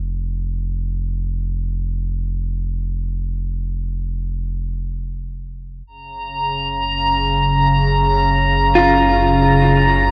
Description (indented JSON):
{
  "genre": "ambient",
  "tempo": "free time",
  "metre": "none",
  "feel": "none",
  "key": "unclear",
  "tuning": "A4 = 440 Hz",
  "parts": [
    { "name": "warm sub bass", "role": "bass", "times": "0.0-10.1 s", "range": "F1 to Gb1", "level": "-24 LUFS", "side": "equal", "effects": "tube saturation" },
    { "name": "organ-like drone", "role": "drone", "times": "6.4-10.1 s", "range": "Db3", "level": "-21 LUFS", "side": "equal", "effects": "ensemble chorus, built-in reverb" },
    { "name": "drifting glass-harmonics texture", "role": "texture", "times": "6.1-10.1 s", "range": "Bb5", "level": "-20 LUFS", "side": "equal", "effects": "chorus, built-in reverb" },
    { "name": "semi-hollow electric guitar", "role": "arpeggios", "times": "8.8-10.1 s", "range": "F4", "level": "-19 LUFS", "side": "equal", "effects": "tape echo" }
  ],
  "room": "moderate huge ambient reverb, RT60 8.2 s",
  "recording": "worn, warbling old tape, cassette tape, warbly pitch drift",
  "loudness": "-18 LUFS",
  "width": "mono",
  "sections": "0.0-10.1 A section",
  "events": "none",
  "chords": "0.0 N.C.; 5.9 Gbmaj7",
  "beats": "free time"
}